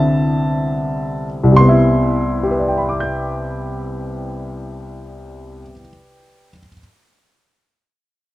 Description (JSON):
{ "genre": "solo jazz", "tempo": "69-80 BPM", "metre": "4/4", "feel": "swing 69% on 8ths", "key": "C major", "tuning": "A4 = 441 Hz", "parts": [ { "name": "warm baby grand piano", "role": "solo", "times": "0.0-6.8 s", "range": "C2 to G6", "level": "-16 LUFS", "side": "equal", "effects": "none" } ], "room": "light reverb", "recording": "dry, close 1970s-style studio recording", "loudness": "-15 LUFS", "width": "side -16 dB against mid", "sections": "0.0-1.6 A section; 1.6-5.0 B section", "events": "slowing down 0.0-1.6", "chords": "0.0 Cmaj7" }